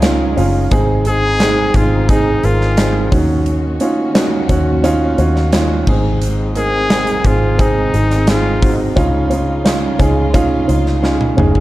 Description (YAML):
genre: piano-driven pop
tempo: 87 BPM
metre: 4/4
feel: straight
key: unclear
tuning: A4 = 440 Hz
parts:
  - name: bright trumpet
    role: melody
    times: 0.0-8.8 s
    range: Eb4 to Ab4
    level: -20 LUFS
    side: left 2 dB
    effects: none
  - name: warm upright piano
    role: accompaniment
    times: 0.0-11.6 s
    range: Ab2 to Bb4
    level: -16 LUFS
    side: right 2 dB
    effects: none
  - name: dark studio string section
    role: sustained chords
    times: 0.0-11.6 s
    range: Db3 to Gb4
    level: -27 LUFS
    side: left 2 dB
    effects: none
  - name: vintage muted fingered electric bass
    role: bass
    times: 0.0-11.6 s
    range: Gb1 to Eb2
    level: -17 LUFS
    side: equal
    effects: none
  - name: huge arena drum kit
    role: drums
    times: 0.0-11.6 s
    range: crash cymbal, hi-hat, kick drum, snare drum, toms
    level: -17 LUFS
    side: equal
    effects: none
room: light reverb, studio reverb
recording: dark, warm production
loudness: -12 LUFS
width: side -16 dB against mid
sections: 0.7-11.6 A section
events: drum fill 11.0-11.6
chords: 0.0 Dbadd9; 0.7 Ab; 3.1 Ebm7; 5.9 Ab; 9.0 Dbadd9